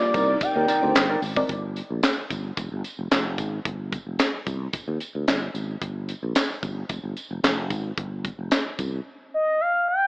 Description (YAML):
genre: early-eighties boogie funk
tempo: 111 BPM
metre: 4/4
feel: straight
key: unclear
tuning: A4 = 440 Hz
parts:
  - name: expressive synth lead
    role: melody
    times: 0.0-1.2, 9.3-10.1 s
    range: D5 to G5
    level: -21 LUFS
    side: equal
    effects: chorus, slapback echo
  - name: FM electric piano with soft pad layer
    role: accompaniment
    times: 0.0-1.5 s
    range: Bb3 to D5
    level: -28 LUFS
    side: left 1 dB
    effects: chorus, tremolo
  - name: string machine, violins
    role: sustained chords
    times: 0.0-1.5 s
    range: C3 to D5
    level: -34 LUFS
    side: equal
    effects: ensemble chorus
  - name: mellow electric guitar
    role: riff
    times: 0.0-1.4 s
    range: Eb4 to D5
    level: -29 LUFS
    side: right 1 dB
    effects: analog chorus
  - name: sustaining fretless electric bass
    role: bass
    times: 0.1-9.0 s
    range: F1 to Eb2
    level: -29 LUFS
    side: equal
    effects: none
  - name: tight funk drum kit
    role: drums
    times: 0.1-8.9 s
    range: handclaps, hi-hat, kick drum, snare drum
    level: -24 LUFS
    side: equal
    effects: gated reverb
  - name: tambourine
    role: percussion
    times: 0.1-8.9 s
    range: none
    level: -39 LUFS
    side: right 2 dB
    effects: none
room: light reverb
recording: AM radio sound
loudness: -23 LUFS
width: side -25 dB against mid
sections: 0.0-1.5 A section; 1.5-10.1 B section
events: none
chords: 0.1 Cm9; 1.5 N.C.; 2.6 Fm; 3.7 Fsus2; 4.5 Cmadd9; 5.8 N.C.; 6.9 Fm; 8.0 Fsus2; 8.8 Cmadd11